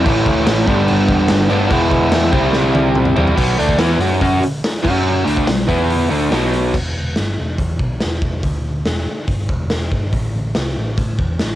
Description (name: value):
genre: garage rock duo or trio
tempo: 143 BPM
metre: 4/4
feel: straight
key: unclear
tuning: A4 = 442 Hz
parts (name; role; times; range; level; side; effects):
- crunchy overdriven guitar; riff; 0.0-6.7 s; G2 to F#4; -14 LUFS; equal; none
- hollow-body short-scale picked electric bass; bass; 0.0-11.6 s; E1 to A2; -21 LUFS; equal; none
- raw garage drum kit; drums; 0.1-11.5 s; crash cymbal, hi-hat, kick drum, snare drum, toms; -19 LUFS; equal; cassette tape
room: little or no reverb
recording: home recording on cassette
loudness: -14 LUFS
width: side -13 dB against mid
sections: 0.0-3.4 A section; 3.4-6.7 B section; 6.7-11.6 C section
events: drum fill 2.5-3.4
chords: 0.1 A; 0.7 G; 1.7 E; 2.3 C; 3.4 Bm11; 4.4 N.C.; 4.8 F#5; 5.3 C5; 5.7 E5; 6.1 D5; 6.3 B5; 6.7 E5; 8.4 N.C.; 8.9 Em; 10.1 A5